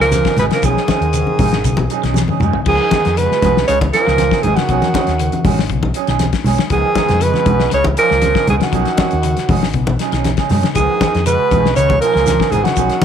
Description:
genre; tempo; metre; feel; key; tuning
afrobeat; 118 BPM; 4/4; straight; Db mixolydian; A4 = 440 Hz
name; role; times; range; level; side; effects
breathy alto saxophone; melody; 0.0-13.0 s; Gb4 to Db5; -16 LUFS; right 3 dB; none
muted trombone section; second line; 0.0-13.0 s; Gb2 to Db3; -26 LUFS; left 12 dB; none
warm trombone; second line; 0.0-13.0 s; Eb3 to Ab3; -26 LUFS; right 11 dB; none
clean electric guitar; arpeggios; 0.0-13.0 s; Cb3 to F3; -25 LUFS; left 12 dB; phaser
electric guitar through a small old amp; stabs; 0.0-13.0 s; F3 to Ab4; -22 LUFS; right 11 dB; none
fingered electric bass; bass; 0.0-13.0 s; Ab1 to Gb2; -19 LUFS; equal; none
cloth-damped thuddy drum kit; drums; 0.0-13.0 s; crash cymbal, hi-hat, kick drum, snare drum, toms; -20 LUFS; left 5 dB; none
congas; percussion; 0.1-13.0 s; none; -19 LUFS; left 1 dB; none
shekere; percussion; 0.1-2.5, 10.8-13.0 s; none; -24 LUFS; right 7 dB; none
room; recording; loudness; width
light reverb, small room ambience; 1960s-style stereo with parts hard left and right; -12 LUFS; side -8 dB against mid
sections
0.0-2.7 A section; 2.7-13.0 A section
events
drum fill 2.2-2.7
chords
0.0 Db9; 0.6 Cb69; 2.7 Db9; 4.7 Cb69; 6.7 Db9; 8.7 Cb69; 10.8 Db9

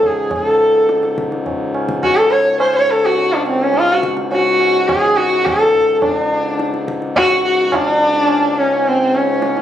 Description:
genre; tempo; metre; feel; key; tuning
indian classical, Hindustani; 106 BPM; 5/4; straight; unclear; A4 = 440 Hz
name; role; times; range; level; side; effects
dark sarangi; melody; 0.0-9.6 s; B#3 to C#5; -13 LUFS; equal; none
pedal harmonium; drone; 0.0-9.6 s; C#2 to G#2; -23 LUFS; equal; none
tabla; percussion; 0.0-9.6 s; none; -24 LUFS; right 4 dB; none
room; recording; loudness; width
light reverb; recorded on a phone in the room, studio reverb; -13 LUFS; side -10 dB against mid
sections
0.3-9.6 A section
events
none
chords
none

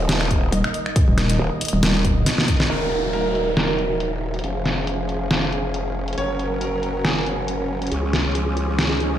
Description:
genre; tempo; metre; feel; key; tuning
heavy wobble dubstep; 138 BPM; 4/4; swing 55% on 16ths, half-time; Eb minor; A4 = 440 Hz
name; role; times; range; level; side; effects
supersaw chords; sustained chords; 0.0-9.2 s; Eb3 to Eb5; -26 LUFS; right 1 dB; sidechain pumping, low-pass filter
growl bass; bass; 0.0-9.2 s; Eb1 to Db2; -25 LUFS; equal; chorus, overdrive
dubstep drum kit; drums; 0.1-9.1 s; crash cymbal, finger snaps, hi-hat, snare drum; -23 LUFS; equal; low-pass filter on hats, low-pass filter on snare, low-pass filter on cymbals, low-pass filter on room
electronic kick drum; drums; 0.3-2.6 s; none; -19 LUFS; equal; none
pulsing pluck wobble bass; bass; 0.5-2.2 s; Eb1; -19 LUFS; equal; distortion, chorus, overdrive
bright concert grand piano; melody; 2.7-7.3 s; Ab4 to Db5; -27 LUFS; right 2 dB; tape echo
downlifter and swell; sound effects; 2.7-6.2, 8.9-9.2 s; none; -30 LUFS; right 2 dB; none
room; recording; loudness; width
moderate plate reverb, RT60 1.1 s; played on a big sound system in a bare room, large studio reverb; -19 LUFS; side -11 dB against mid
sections
0.0-2.7 A section; 2.7-9.2 B section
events
drop 0.0-2.7; drum fill 2.3-2.7; band accent 2.6; filter sweep on supersaw synth 2.7-9.2; swell 8.9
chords
0.0 Eb5; 2.7 Ebm; 4.4 Db/F; 6.2 Gb; 7.9 Db

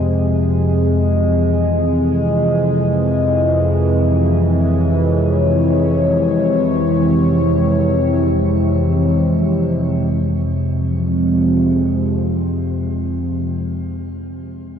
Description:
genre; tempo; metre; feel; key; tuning
dark ambient drone; free time; none; none; F harmonic minor; A4 = 437 Hz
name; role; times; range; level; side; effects
sweeping resonant pad; sustained chords; 0.0-14.0 s; C3 to Db5; -17 LUFS; equal; chorus, phaser, shimmer reverb
analog drone; drone; 0.0-13.5 s; F2 to C3; -17 LUFS; equal; chorus
room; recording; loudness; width
wet cathedral reverb, RT60 6.8 s; none; -14 LUFS; side -8 dB against mid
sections
0.0-10.1 A section; 10.1-14.8 B section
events
none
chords
0.0 Dbm; 10.1 Fm

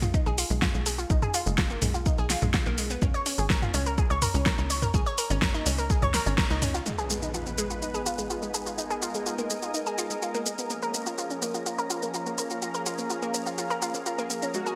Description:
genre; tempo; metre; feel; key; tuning
melodic techno; 125 BPM; 4/4; straight; G# dorian; A4 = 439 Hz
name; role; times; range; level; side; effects
analog pluck; arpeggios; 0.0-14.8 s; G#3 to C#5; -34 LUFS; equal; chorus, sidechain pumping, delay
tight sequencer bass; bass; 0.0-6.8 s; F#1 to C#2; -32 LUFS; equal; tube saturation, sidechain pumping
deep house drum kit; drums; 0.0-14.8 s; hi-hat, shaker, snare drum, toms; -32 LUFS; equal; gated reverb
electronic kick drum; drums; 0.1-6.5 s; none; -29 LUFS; equal; none
lush unison pad; sustained chords; 6.9-14.8 s; D#3 to B4; -38 LUFS; equal; chorus, sidechain pumping
impact; sound effects; 6.9-8.8 s; none; -40 LUFS; equal; none
granular cloud pad; texture; 8.1-14.8 s; G#4 to A#5; -40 LUFS; equal; built-in reverb, analog chorus, sidechain pumping
soft supersaw; melody; 14.5-14.8 s; F#4; -33 LUFS; equal; ensemble chorus, sidechain pumping
room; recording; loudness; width
light reverb, digital ambience; bright 1980s-style digital production; -28 LUFS; mono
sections
0.0-6.9 A section; 6.9-14.8 B section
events
band accent 6.4; impact 6.9-8.8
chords
0.0 G#m; 3.0 C#5; 6.9 G#m; 10.7 A#m

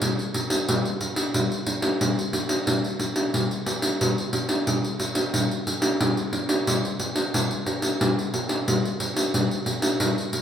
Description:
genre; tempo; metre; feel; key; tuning
samba; 90 BPM; 4/4; straight; none; none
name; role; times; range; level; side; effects
pandeiro; percussion; 0.0-10.4 s; none; -22 LUFS; equal; none
room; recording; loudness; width
wet large studio reverb, RT60 1.3 s; band playing live in one room; -22 LUFS; side -9 dB against mid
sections
0.0-10.4 A section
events
none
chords
none

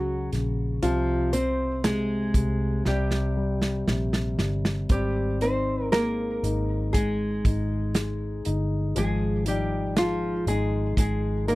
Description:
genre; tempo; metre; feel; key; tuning
pop ballad; 59 BPM; 4/4; straight; F minor; A4 = 440 Hz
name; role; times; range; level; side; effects
nylon-string guitar; melody; 0.0-11.6 s; F3 to C5; -27 LUFS; equal; none
dark concert grand piano; accompaniment; 0.0-11.6 s; C3 to Eb4; -31 LUFS; left 3 dB; none
vintage muted fingered electric bass; bass; 0.0-11.6 s; G1 to Db2; -28 LUFS; equal; none
natural country drum kit; drums; 0.3-11.6 s; hi-hat, kick drum, snare drum; -25 LUFS; right 1 dB; none
room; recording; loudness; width
little or no reverb; dry, close 1970s-style studio recording; -23 LUFS; side -19 dB against mid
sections
0.0-11.6 A section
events
drum fill 2.9-4.9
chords
0.0 Gb/Db; 0.8 Fm/C; 2.9 C5; 4.9 Abmaj7; 9.0 Fm7/Ab

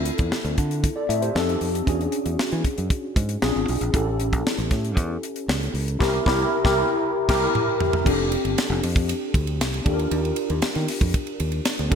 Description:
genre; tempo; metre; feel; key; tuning
polished 1980s jazz-funk pop; 116 BPM; 4/4; straight; F major; A4 = 440 Hz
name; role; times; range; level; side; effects
mellow tine electric piano; accompaniment; 0.0-12.0 s; C4 to E5; -24 LUFS; left 1 dB; medium stereo tremolo, ensemble chorus
fingered electric bass; bass; 0.0-12.0 s; F1 to E3; -26 LUFS; right 1 dB; none
tight funk drum kit; drums; 0.1-12.0 s; crash cymbal, hi-hat, kick drum, ride cymbal, snare drum, toms; -24 LUFS; equal; gated reverb
room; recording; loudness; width
moderate lush hall reverb, RT60 1.6 s, small room ambience; bright 1980s-style digital production; -20 LUFS; side -7 dB against mid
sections
0.0-8.1 A section; 8.1-12.0 B section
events
band accent 6.0-8.1; drum fill 7.0-8.1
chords
0.0 Dm9; 1.4 F9; 1.9 E13; 3.4 Bb9; 3.9 A7; 6.0 C7; 8.1 F69; 9.9 Ebmaj7

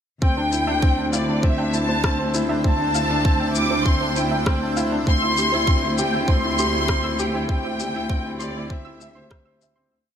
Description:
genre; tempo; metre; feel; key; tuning
piano and strings electronica; 99 BPM; 4/4; straight; unclear; A4 = 443 Hz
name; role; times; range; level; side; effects
rich studio violin section; melody; 0.2-9.6 s; D5 to D6; -24 LUFS; left 1 dB; none
granular cloud pad; sustained chords; 1.8-9.9 s; D4 to G5; -31 LUFS; equal; built-in reverb, sidechain pumping
felt-muted upright piano; riff; 0.2-9.9 s; C4 to E5; -25 LUFS; equal; ping-pong delay
rich studio cello section; bass; 0.2-9.9 s; D2; -26 LUFS; equal; sidechain pumping
electronic kick drum; drums; 0.2-9.4 s; none; -19 LUFS; equal; studio reverb
soft round pluck; arpeggios; 0.4-9.9 s; C5 to G6; -34 LUFS; right 4 dB; none
electronic shaker and rim click; drums; 0.5-9.7 s; none; -28 LUFS; left 4 dB; studio reverb
room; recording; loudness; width
light reverb, small room reverb; none; -18 LUFS; side -8 dB against mid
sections
0.2-9.9 drop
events
drop 0.2-9.9; fade-out 6.7-9.9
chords
0.2 Dm11; 5.1 C/D

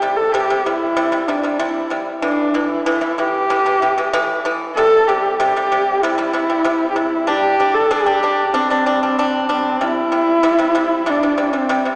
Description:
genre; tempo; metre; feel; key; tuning
mongolian traditional, Mongolian folk; 95 BPM; 4/4; straight; C gong mode; A4 = 442 Hz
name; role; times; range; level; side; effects
rich horsehead fiddle; melody; 0.0-12.0 s; C4 to A4; -16 LUFS; equal; none
pipa; arpeggios; 0.0-12.0 s; A2 to D4; -19 LUFS; equal; none
room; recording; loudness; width
wet concert hall reverb, RT60 2.2 s; recorded in a church or concert hall, small speaker sound; -14 LUFS; side -29 dB against mid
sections
0.0-9.8 A section; 9.8-12.0 B section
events
none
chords
0.0 C5; 2.2 A5; 4.8 C5; 7.3 G5; 9.8 C5

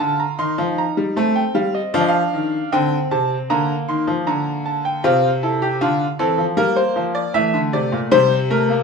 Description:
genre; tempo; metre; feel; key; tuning
classical, baroque-style 3-part fugue for grand piano; 78 BPM; 4/4; straight; unclear; A4 = 438 Hz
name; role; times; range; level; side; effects
bright grand piano; solo; 0.0-8.8 s; Bb2 to C6; -16 LUFS; equal; none
room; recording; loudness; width
moderate stone room reverb, RT60 1.2 s; minimal, uncompressed stereo recording; -16 LUFS; side -5 dB against mid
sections
0.0-8.8 A section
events
none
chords
0.4 Cm7/Eb; 1.9 F7; 3.5 Bb/D; 5.0 F/C; 6.6 Gm7; 8.1 C7(no3)

